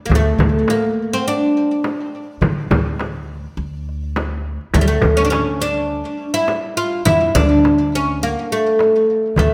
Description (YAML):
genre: Arabic maqam ensemble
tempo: 104 BPM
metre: 4/4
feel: straight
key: D maqam nahawand from 4.7 s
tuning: A4 = 440 Hz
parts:
  - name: oud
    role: melody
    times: 0.1-9.5 s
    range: G3 to F4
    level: -18 LUFS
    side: equal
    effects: tape echo
  - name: upright bass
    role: bass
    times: 0.1-9.5 s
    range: D2 to D3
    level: -23 LUFS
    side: equal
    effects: none
  - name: darbuka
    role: percussion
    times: 0.1-9.5 s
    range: none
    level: -25 LUFS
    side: equal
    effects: none
  - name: frame drum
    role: percussion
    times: 0.1-9.5 s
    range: none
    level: -24 LUFS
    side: equal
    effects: none
room: moderate recital hall reverb, RT60 1.4 s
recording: none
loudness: -17 LUFS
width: mono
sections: 0.0-4.7 A section; 4.7-9.5 B section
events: none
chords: none